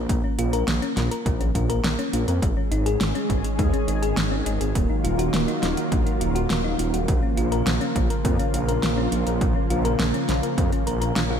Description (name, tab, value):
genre	synthwave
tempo	103 BPM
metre	4/4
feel	straight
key	Bb minor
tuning	A4 = 440 Hz
part	thumb-piano-like synth pluck	arpeggios	0.0-11.4 s	Ab3 to Bb4	-27 LUFS	left 2 dB	chorus, ping-pong delay, slapback echo
part	wide detuned saw bass	bass	0.0-11.4 s	Eb1 to F2	-25 LUFS	equal	chorus, tube saturation
part	electronic kick drum	drums	0.1-10.7 s	none	-24 LUFS	equal	none
part	pop drum kit	drums	0.1-11.3 s	hi-hat, snare drum	-28 LUFS	equal	none
part	analog string pad	sustained chords	2.4-11.4 s	Db3 to Ab4	-27 LUFS	right 2 dB	ensemble chorus, sidechain pumping
room	moderate lush hall reverb, RT60 2.0 s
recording	big arena sound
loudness	-20 LUFS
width	side -8 dB against mid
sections	0.0-11.4 A section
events	none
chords	0.0 Bbm; 2.4 Absus4; 4.8 Ebmadd9; 7.1 Bbm